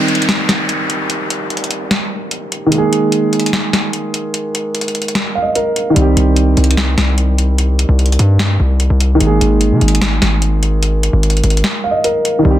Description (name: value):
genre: hip hop, trap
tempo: 148 BPM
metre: 4/4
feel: half-time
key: unclear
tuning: A4 = 441 Hz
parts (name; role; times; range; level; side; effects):
- dark concert grand piano; accompaniment; 0.0-12.6 s; Eb3 to F5; -16 LUFS; right 1 dB; none
- downlifter; sound effects; 0.0-2.7 s; none; -21 LUFS; left 1 dB; none
- booming analog drum machine; drums; 0.1-12.3 s; hi-hat, snare drum; -18 LUFS; left 1 dB; vintage 12-bit sampler grit
- hard-hitting 808-style bass; bass; 6.0-12.6 s; Ab1 to C3; -12 LUFS; equal; none
- warm analog pad; sustained chords; 12.4-12.6 s; none; barely audible; none; none
room: light reverb, studio ambience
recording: dense, heavily limited modern master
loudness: -12 LUFS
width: side -13 dB against mid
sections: 0.0-12.6 A section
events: break 0.0-6.0; grand piano fill 5.2-6.0; kick muted 11.6-12.4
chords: 0.0 Cm; 2.7 Absus2; 6.0 Cm; 9.2 Absus2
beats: 0.29 0.69 | 1.10 1.50 1.91 2.31 | 2.72 3.12 3.53 3.94 | 4.34 4.75 5.15 5.56 | 5.96 6.37 6.77 7.18 | 7.58 7.99 8.39 8.80 | 9.21 9.61 10.02 10.42 | 10.83 11.23 11.64 12.04 | 12.45